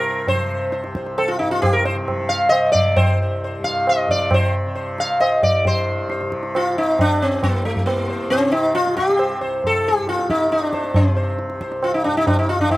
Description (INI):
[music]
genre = indian classical, Hindustani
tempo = 135 BPM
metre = 3/4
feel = straight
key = C raga bhimpalasi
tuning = A4 = 441 Hz
[part]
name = sitar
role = melody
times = 0.0-12.8 s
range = A3 to F5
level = -18 LUFS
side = equal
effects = none
[part]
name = tanpura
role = drone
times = 0.0-12.8 s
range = C2 to C3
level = -28 LUFS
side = equal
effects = none
[part]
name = tabla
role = percussion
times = 0.3-12.8 s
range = none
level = -22 LUFS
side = right 1 dB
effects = none
[sound]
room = little or no reverb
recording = recorded outdoors, with no room sound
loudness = -17 LUFS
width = side -18 dB against mid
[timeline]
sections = 0.0-5.7 A section; 5.7-12.8 B section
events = speeding up 0.0-12.8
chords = none